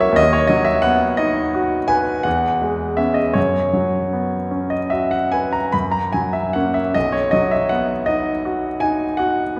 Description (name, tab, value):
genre	classical, romantic nocturne for solo piano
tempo	48-62 BPM (dotted quarters)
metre	9/8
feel	rubato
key	B major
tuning	A4 = 440 Hz
part	clear grand piano	solo	0.0-9.6 s	B1 to B5	-19 LUFS	equal	none
room	wet concert hall reverb, RT60 2.3 s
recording	recorded in a church or concert hall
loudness	-19 LUFS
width	mono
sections	0.0-9.6 A section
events	none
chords	0.2 B/D#; 2.3 C#m7/E; 3.4 F#sus4; 5.7 F#; 6.9 B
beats	| 0.20 1.19 2.26 | 3.36 4.53 5.73 | 6.95 8.07 9.19